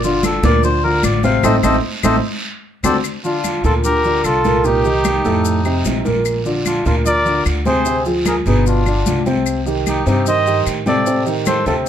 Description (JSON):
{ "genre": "Afro-Cuban jazz", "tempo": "150 BPM", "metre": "4/4", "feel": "straight", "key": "G minor", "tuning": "A4 = 440 Hz", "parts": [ { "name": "melodica", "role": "second line", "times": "0.0-11.9 s", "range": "D4 to F5", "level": "-22 LUFS", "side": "left 3 dB", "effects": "none" }, { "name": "dark concert grand piano", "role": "accompaniment", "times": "0.0-11.9 s", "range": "A2 to C5", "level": "-18 LUFS", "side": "right 1 dB", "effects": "none" }, { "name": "upright bass", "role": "bass", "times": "0.0-11.9 s", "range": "G1 to A2", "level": "-20 LUFS", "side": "equal", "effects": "none" }, { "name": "congas", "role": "percussion", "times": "0.0-11.9 s", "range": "none", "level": "-25 LUFS", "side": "left 2 dB", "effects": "none" }, { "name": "maracas", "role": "percussion", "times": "0.0-11.9 s", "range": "none", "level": "-30 LUFS", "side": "left 10 dB", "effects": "none" }, { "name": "claves", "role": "percussion", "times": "0.2-11.7 s", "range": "none", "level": "-29 LUFS", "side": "left 9 dB", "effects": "none" }, { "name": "guiro", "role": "percussion", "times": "0.2-11.9 s", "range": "none", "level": "-30 LUFS", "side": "right 3 dB", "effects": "none" }, { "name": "breathy trumpet", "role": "melody", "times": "3.2-11.8 s", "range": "F4 to Eb5", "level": "-20 LUFS", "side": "right 1 dB", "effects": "none" } ], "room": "moderate club reverb, RT60 0.8 s", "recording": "none", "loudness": "-14 LUFS", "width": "side -9 dB against mid", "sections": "0.0-3.0 A section; 3.0-11.9 B section", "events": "melodica solo 0.0-3.0; band accent 1.4-3.0", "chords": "0.0 Gm9; 1.4 Adim; 2.2 D7; 3.0 Gm9; 4.6 Cm7; 5.5 F9; 6.3 Bbadd9; 7.9 Dm7b5; 8.7 G7; 9.5 Cm; 11.1 Am7b5", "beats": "0.24 0.64 1.04 | 1.44 1.84 2.24 2.64 | 3.04 3.44 3.84 4.25 | 4.65 5.05 5.45 5.85 | 6.25 6.66 7.06 7.46 | 7.86 8.26 8.66 9.06 | 9.46 9.87 10.27 10.67 | 11.07 11.47 11.87" }